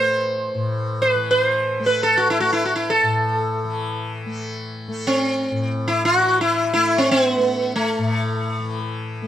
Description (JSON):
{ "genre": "indian classical, Hindustani", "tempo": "free time", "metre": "none", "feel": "none", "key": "A raga shivaranjani", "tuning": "A4 = 442 Hz", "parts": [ { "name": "sitar", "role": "melody", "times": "0.0-8.8 s", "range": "A3 to C5", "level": "-18 LUFS", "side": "equal", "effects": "none" }, { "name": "tanpura", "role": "drone", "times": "0.0-9.3 s", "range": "A2 to A3", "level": "-26 LUFS", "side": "left 2 dB", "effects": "none" } ], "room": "little or no reverb", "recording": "close, detailed microphones", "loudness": "-18 LUFS", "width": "side -11 dB against mid", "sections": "0.0-9.3 A section", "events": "none", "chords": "none" }